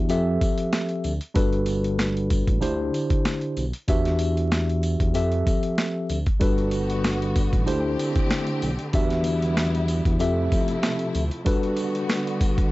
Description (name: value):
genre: hip hop, boom-bap hip-hop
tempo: 95 BPM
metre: 4/4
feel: swing 54% on 16ths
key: unclear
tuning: A4 = 440 Hz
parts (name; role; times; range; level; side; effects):
- mellow tine electric piano; accompaniment; 0.0-12.7 s; D3 to E5; -25 LUFS; equal; slow stereo tremolo, cassette tape
- smooth synth bass; bass; 0.0-11.3 s; G1 to F2; -26 LUFS; equal; none
- boom bap sampler-style drum kit; drums; 0.1-12.7 s; hi-hat, kick drum, snare drum; -24 LUFS; equal; none
- sleigh bells; percussion; 0.1-12.6 s; none; -45 LUFS; right 2 dB; none
- warm studio string section; sustained chords; 6.4-12.7 s; C3 to G4; -31 LUFS; left 1 dB; none
room: little or no reverb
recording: dry, gritty hardware recording, vinyl crackle, nothing above 7.9 kHz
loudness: -21 LUFS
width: side -18 dB against mid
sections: 0.0-12.7 A section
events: none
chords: 0.1 Fmaj7; 1.4 Gmaj7; 2.6 D7sus4; 3.9 Em7; 5.1 Fmaj7; 6.4 Gmaj7; 7.7 D7sus4; 8.9 Em7; 10.2 Fmaj7; 11.5 Gmaj7